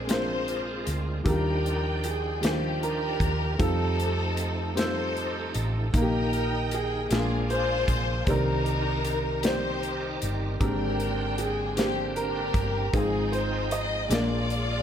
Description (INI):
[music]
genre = slow gospel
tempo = 51 BPM (dotted quarters)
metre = 6/8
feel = straight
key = Eb major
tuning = A4 = 440 Hz
[part]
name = warm concert grand piano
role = melody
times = 0.0-14.8 s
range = G4 to Eb5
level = -33 LUFS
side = right 2 dB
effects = none
[part]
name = warm studio string section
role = melody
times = 0.0-14.8 s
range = C4 to G5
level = -32 LUFS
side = left 3 dB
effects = none
[part]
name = warm upright piano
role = accompaniment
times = 0.0-14.8 s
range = Ab2 to D5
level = -31 LUFS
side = left 1 dB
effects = none
[part]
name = bright tonewheel organ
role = sustained chords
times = 0.0-14.8 s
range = D3 to G5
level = -37 LUFS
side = right 3 dB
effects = slow rotary speaker, chorus vibrato
[part]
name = hollow-body short-scale fingered electric bass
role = bass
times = 0.0-14.8 s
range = G1 to F2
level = -30 LUFS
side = equal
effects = none
[part]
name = modern studio drum kit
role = drums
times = 0.1-14.7 s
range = hi-hat, kick drum, snare drum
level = -30 LUFS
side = equal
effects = none
[sound]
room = light reverb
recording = none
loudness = -24 LUFS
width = side -9 dB against mid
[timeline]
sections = 0.0-14.8 A section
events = none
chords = 0.0 Bb9; 1.3 Ebmaj9; 3.6 F9; 5.9 Eb/Bb; 7.1 Bb7; 8.3 Cm9; 10.6 Abmaj9#11; 12.9 Fm9/Ab; 14.1 Bb7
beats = 0.09 | 1.26 2.43 | 3.60 4.77 | 5.93 7.10 | 8.27 9.44 | 10.60 11.77 | 12.93 14.10